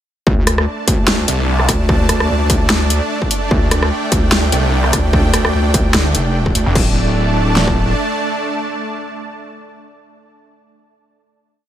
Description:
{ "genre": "heavy wobble dubstep", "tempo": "148 BPM", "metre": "4/4", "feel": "swing 55% on 16ths, half-time", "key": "unclear", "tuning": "A4 = 438 Hz", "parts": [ { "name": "supersaw pad", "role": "sustained chords", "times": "0.3-10.3 s", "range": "A3 to A5", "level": "-20 LUFS", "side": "right 2 dB", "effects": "sidechain pumping" }, { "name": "wobble bass", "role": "bass", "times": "0.3-7.9 s", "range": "D1 to D2", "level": "-16 LUFS", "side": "equal", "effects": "chorus, overdrive" }, { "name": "dubstep drum kit", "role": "drums", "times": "0.3-7.8 s", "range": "kick drum, snare drum", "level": "-17 LUFS", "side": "equal", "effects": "distortion, small room ambience" }, { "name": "dubstep drum kit", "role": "drums", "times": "0.5-6.8 s", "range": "crash cymbal, hi-hat, rim click, snare drum", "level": "-18 LUFS", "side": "equal", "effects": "small room ambience" }, { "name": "snarling distorted saw bass", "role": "bass", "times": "1.3-1.7, 4.5-6.7 s", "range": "F1 to D2", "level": "-15 LUFS", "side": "equal", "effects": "distortion, overdrive" } ], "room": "little or no reverb", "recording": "none", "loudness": "-13 LUFS", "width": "side -11 dB against mid", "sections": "0.3-6.8 drop; 6.8-10.0 final chord", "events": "drop 0.3-6.8", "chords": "0.3 D5", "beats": "| 0.27 0.67 1.08 1.48 | 1.89 2.29 2.70 3.10 | 3.51 3.92 4.32 4.73 | 5.13 5.54 5.94 6.35 | 6.75 7.16 7.57 7.97 | 8.38 8.78 9.19 9.59" }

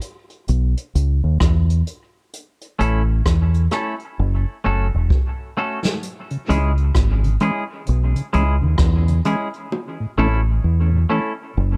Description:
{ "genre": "dub reggae", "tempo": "65 BPM", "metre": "4/4", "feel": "swing 62% on 16ths", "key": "C# minor", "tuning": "A4 = 439 Hz", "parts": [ { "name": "jazz brush drum kit", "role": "drums", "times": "0.0-9.7 s", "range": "hi-hat, kick drum, rim click, snare drum", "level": "-23 LUFS", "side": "equal", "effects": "none" }, { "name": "deep dub fingered electric bass", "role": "bass", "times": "0.5-11.8 s", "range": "E1 to E2", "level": "-19 LUFS", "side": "equal", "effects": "none" }, { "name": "semi-hollow electric guitar", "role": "accompaniment", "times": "2.8-11.3 s", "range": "G#3 to A4", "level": "-27 LUFS", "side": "equal", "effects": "dub echo" }, { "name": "mellow tonewheel organ", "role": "accompaniment", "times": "6.3-11.2 s", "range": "A2 to C#4", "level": "-28 LUFS", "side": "equal", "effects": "chorus vibrato, slow rotary speaker, dub echo" }, { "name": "bongos", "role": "percussion", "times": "9.7-10.0 s", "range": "none", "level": "-33 LUFS", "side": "equal", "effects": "dub echo" } ], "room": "studio reverb", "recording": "dark, warm production", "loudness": "-20 LUFS", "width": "mono", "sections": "0.0-11.8 A section", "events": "break 0.0-9.7; drum fill 4.2-6.0; part muted 9.7-11.8", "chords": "0.0 C#m; 2.3 A; 4.2 F#m; 6.0 C#m; 9.7 A", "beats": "0.49 1.41 | 2.33 3.26 4.18 5.10 | 6.03 6.95 7.87 8.79 | 9.72 10.64 11.56" }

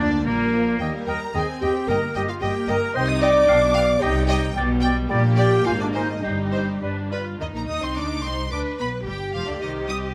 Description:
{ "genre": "quick classical-period movement for symphony orchestra", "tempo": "110 BPM", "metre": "2/4", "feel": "rubato", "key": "C minor", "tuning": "A4 = 440 Hz", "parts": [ { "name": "rich studio violin section", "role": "melody", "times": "0.0-10.0 s", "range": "Bb3 to Eb6", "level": "-34 LUFS", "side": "equal", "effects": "none" }, { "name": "bright clarinet", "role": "second line", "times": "0.0-7.1 s", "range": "G3 to Eb5", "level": "-32 LUFS", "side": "equal", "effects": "none" }, { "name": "clear oboe", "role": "second line", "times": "0.0-7.2 s", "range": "Bb3 to F5", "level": "-32 LUFS", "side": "equal", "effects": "none" }, { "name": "mellow hollow silver concert flute", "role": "second line", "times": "0.0-7.2 s", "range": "D4 to Ab5", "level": "-35 LUFS", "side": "equal", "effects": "none" }, { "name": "warm studio violin section", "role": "second line", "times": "0.0-10.1 s", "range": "D4 to Eb6", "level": "-35 LUFS", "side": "equal", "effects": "none" }, { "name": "rich studio viola section", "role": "accompaniment", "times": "0.0-10.1 s", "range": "D3 to F4", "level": "-33 LUFS", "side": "equal", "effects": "none" }, { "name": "dark French horn section", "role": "sustained chords", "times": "0.0-7.1 s", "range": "G3 to Eb5", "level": "-25 LUFS", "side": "equal", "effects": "none" }, { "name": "rich symphonic double bass section", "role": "bass", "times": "0.0-10.1 s", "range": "F1 to Eb2", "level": "-30 LUFS", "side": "equal", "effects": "none" }, { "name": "warm studio cello section", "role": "bass", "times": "0.0-10.1 s", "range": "Eb2 to B4", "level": "-30 LUFS", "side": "equal", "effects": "none" }, { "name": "timpani", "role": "percussion", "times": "1.9-2.6 s", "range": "G2", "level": "-39 LUFS", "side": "equal", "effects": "none" } ], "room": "light reverb", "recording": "close, detailed microphones", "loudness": "-22 LUFS", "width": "mono", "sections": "0.0-7.4 A section; 7.4-10.1 B section", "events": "none", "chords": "0.0 Bb; 0.8 Eb; 1.9 Eb/G; 3.0 Cm; 3.5 G7/B (rootless); 4.0 Cm; 4.6 G/B; 5.1 Gm/Bb; 5.7 Ab69; 6.2 Cm/G; 6.8 G; 7.4 Cm; 8.5 G; 9.6 Cm", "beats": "0.26 | 0.80 1.34 | 1.89 2.42 | 2.95 3.49 | 4.02 4.55 | 5.10 5.66 | 6.24 6.83 | 7.41 7.97 | 8.52 9.06 | 9.61" }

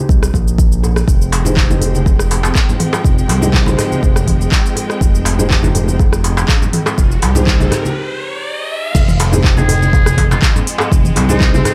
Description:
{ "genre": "afro house", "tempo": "122 BPM", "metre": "4/4", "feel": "straight", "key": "F minor", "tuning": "A4 = 436 Hz", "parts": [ { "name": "felt-muted upright piano", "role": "stabs", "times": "0.0-11.7 s", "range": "Eb4 to G5", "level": "-26 LUFS", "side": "equal", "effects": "subtle chorus, sidechain pumping, low-pass filter, diffuse ambient delay" }, { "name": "smooth gliding synth bass", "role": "bass", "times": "0.1-11.6 s", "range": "F1 to C2", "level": "-18 LUFS", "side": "equal", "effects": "tube saturation, sidechain pumping" }, { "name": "afro-pop drum kit", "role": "drums", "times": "0.1-11.7 s", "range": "crash cymbal, handclaps, hi-hat, rim click, shaker, toms", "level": "-22 LUFS", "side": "equal", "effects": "none" }, { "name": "electronic kick drum", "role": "drums", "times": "0.1-11.5 s", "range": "none", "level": "-16 LUFS", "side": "equal", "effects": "none" }, { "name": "djembe", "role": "percussion", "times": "0.3-11.7 s", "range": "none", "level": "-24 LUFS", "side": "equal", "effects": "none" }, { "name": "rich studio string section", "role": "sustained chords", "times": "1.1-11.7 s", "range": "F3 to G5", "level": "-27 LUFS", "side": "equal", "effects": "sidechain pumping" }, { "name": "congas", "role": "percussion", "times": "1.4-11.6 s", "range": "none", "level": "-23 LUFS", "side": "equal", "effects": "none" }, { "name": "riser", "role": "sound effects", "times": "6.6-8.9 s", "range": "none", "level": "-27 LUFS", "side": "equal", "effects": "none" }, { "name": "trumpet with metal mute", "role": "melody", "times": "9.6-11.7 s", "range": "C4 to Ab4", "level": "-23 LUFS", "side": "equal", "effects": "tape echo" } ], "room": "light reverb, studio reverb", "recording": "none", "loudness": "-13 LUFS", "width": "mono", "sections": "0.0-8.9 A section; 8.9-11.7 B section", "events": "riser 6.6-8.9; break 8.0-8.9; drop 8.9-11.7", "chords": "0.0 Fm7", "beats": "0.09 0.59 | 1.08 1.57 2.06 2.55 | 3.04 3.54 4.03 4.52 | 5.01 5.50 6.00 6.49 | 6.98 7.47 7.96 8.46 | 8.95 9.44 9.93 10.42 | 10.91 11.41" }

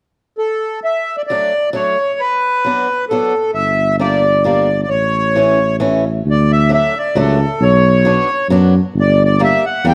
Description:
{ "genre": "alpine folk, alpine dance band", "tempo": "133 BPM", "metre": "3/4", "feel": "swing 55% on 8ths", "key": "D major", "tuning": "A4 = 441 Hz", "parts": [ { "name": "accordion", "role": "melody", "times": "0.4-9.9 s", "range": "A4 to G5", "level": "-17 LUFS", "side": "equal", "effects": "none" }, { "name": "picked swing-style acoustic guitar", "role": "accompaniment", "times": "1.3-9.9 s", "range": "E3 to D4", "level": "-22 LUFS", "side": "equal", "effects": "none" }, { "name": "dark tuba", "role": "bass", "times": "3.5-9.9 s", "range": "G1 to F#2", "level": "-17 LUFS", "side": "equal", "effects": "none" } ], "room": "light reverb", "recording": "worn, warbling old tape, cassette tape, warbly pitch drift", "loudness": "-14 LUFS", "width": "mono", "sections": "0.8-6.3 A section; 6.3-9.9 B section", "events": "none", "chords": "0.0 N.C.; 0.8 D; 2.2 Bm; 3.5 Gm; 4.9 A; 6.3 D; 7.6 Bmadd9; 9.0 Gm", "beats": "0.36 | 0.82 1.27 1.73 | 2.18 2.63 3.09 | 3.54 3.99 4.44 | 4.89 5.35 5.80 | 6.26 6.71 7.16 | 7.61 8.06 8.51 | 8.96 9.40 9.85" }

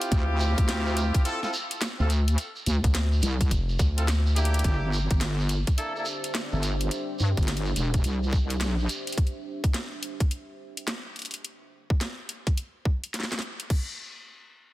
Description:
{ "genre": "glitch hop", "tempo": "106 BPM", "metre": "4/4", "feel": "swing 63% on 16ths", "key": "G dorian", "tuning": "A4 = 440 Hz", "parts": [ { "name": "bright horn section", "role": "stabs", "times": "0.0-6.6 s", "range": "Bb3 to A4", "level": "-32 LUFS", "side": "equal", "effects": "sidechain pumping, low-pass filter, tape echo" }, { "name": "drum and bass drum kit", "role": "drums", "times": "0.0-13.8 s", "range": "crash cymbal, hi-hat, snare drum", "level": "-32 LUFS", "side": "equal", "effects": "overdrive, small room ambience" }, { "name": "shekere", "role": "percussion", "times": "0.0-9.2 s", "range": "none", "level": "-37 LUFS", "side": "right 2 dB", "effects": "none" }, { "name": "wobble bass", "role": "bass", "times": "0.1-8.9 s", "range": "E1 to G2", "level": "-25 LUFS", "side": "equal", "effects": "chorus, tube saturation" }, { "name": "electronic kick drum", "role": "drums", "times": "0.1-13.8 s", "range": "none", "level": "-23 LUFS", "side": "equal", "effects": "overdrive, small room ambience" }, { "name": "rubbery square bass", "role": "bass", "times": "2.8-4.6 s", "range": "F1 to D2", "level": "-23 LUFS", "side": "equal", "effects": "none" }, { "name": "deep dark ambient pad", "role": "texture", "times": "5.9-9.2 s", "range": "D4 to E5", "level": "-38 LUFS", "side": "right 1 dB", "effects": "chorus, built-in reverb, sidechain pumping" } ], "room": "digital ambience", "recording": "dense, heavily limited modern master", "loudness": "-24 LUFS", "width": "side -16 dB against mid", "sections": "0.0-4.6 A section; 4.6-13.7 B section; 13.7-14.7 C section", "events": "drop 0.0-4.6; drum fill 4.4; filter sweep on horn section 4.6-6.9", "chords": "0.1 Dm7; 4.6 Gm6; 9.2 N.C.", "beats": "| 0.12 0.68 1.25 1.82 | 2.38 2.95 3.51 4.08 | 4.65 5.21 5.78 6.34 | 6.91 7.48 8.04 8.61 | 9.17 9.74 10.31 10.87 | 11.44 12.01 12.57 13.14 | 13.70" }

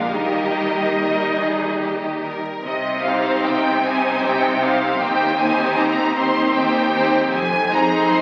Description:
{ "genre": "classical, slow romantic movement for string orchestra", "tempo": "66-79 BPM", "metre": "3/4", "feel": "rubato", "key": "C minor", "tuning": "A4 = 442 Hz", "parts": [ { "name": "clear symphonic violin section", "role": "melody", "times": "0.0-8.2 s", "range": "Eb5 to C6", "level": "-24 LUFS", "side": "equal", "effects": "none" }, { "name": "bright symphonic violin section", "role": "second line", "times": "0.0-8.2 s", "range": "G4 to C5", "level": "-27 LUFS", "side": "equal", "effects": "none" }, { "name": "rich chamber viola section", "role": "accompaniment", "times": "0.0-8.2 s", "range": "G3 to Eb4", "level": "-23 LUFS", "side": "equal", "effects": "none" }, { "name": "rich symphonic cello section", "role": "bass", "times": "0.0-8.2 s", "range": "Eb2 to Eb3", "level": "-28 LUFS", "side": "equal", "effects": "none" }, { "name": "rich symphonic double bass section", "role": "bass", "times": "0.0-8.2 s", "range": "F1 to Eb2", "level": "-36 LUFS", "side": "equal", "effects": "none" } ], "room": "wet concert hall reverb, RT60 2.2 s", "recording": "very old 78 rpm record, vinyl crackle", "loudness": "-19 LUFS", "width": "mono", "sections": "0.0-2.6 A section; 2.6-8.2 B section", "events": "none", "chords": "0.1 Eb; 2.6 Cm; 5.0 Cm/Eb; 7.3 Fm7", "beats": "| 0.11 0.99 1.82 | 2.64 3.44 4.23 | 5.00 5.78 6.56 | 7.33 8.10" }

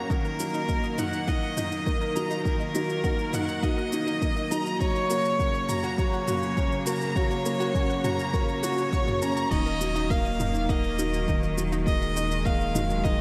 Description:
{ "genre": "piano and strings electronica", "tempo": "102 BPM", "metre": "4/4", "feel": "straight", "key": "unclear", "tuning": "A4 = 440 Hz", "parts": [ { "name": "clear violin", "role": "melody", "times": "0.0-13.2 s", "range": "A#4 to A#5", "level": "-32 LUFS", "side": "equal", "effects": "tape echo" }, { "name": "clear studio string section", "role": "sustained chords", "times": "0.0-13.2 s", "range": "C#3 to A#3", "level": "-36 LUFS", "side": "equal", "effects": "none" }, { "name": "analog pluck", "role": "arpeggios", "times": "0.0-13.1 s", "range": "D#4 to C#6", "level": "-38 LUFS", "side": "equal", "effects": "chorus, cassette tape, sidechain pumping, tape echo" }, { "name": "felt-muted upright piano", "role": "riff", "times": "0.0-13.2 s", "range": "D#3 to A#4", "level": "-33 LUFS", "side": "equal", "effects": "subtle chorus, tape echo" }, { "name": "round analog bass", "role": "bass", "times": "0.0-13.2 s", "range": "D#1", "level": "-34 LUFS", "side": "equal", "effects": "sidechain pumping, high-pass filter" }, { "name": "deep house drum kit", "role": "drums", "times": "0.1-13.2 s", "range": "crash cymbal, shaker, toms", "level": "-39 LUFS", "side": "equal", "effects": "overdrive" }, { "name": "electronic kick drum", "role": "drums", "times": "0.1-13.2 s", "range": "none", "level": "-30 LUFS", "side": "equal", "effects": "none" } ], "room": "wet lush hall reverb, RT60 2.5 s", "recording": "dreamy mix soaked in reverb", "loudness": "-26 LUFS", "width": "mono", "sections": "0.0-9.5 A section; 9.5-13.2 B section", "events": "build-up 0.0-9.5; drop 9.5-13.2", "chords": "0.1 D#m; 4.8 F#; 9.5 D#m", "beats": "| 0.10 0.69 1.28 1.87 | 2.46 3.04 3.63 4.22 | 4.81 5.40 5.99 6.57 | 7.16 7.75 8.34 8.93 | 9.52 10.10 10.69 11.28 | 11.87 12.46 13.04" }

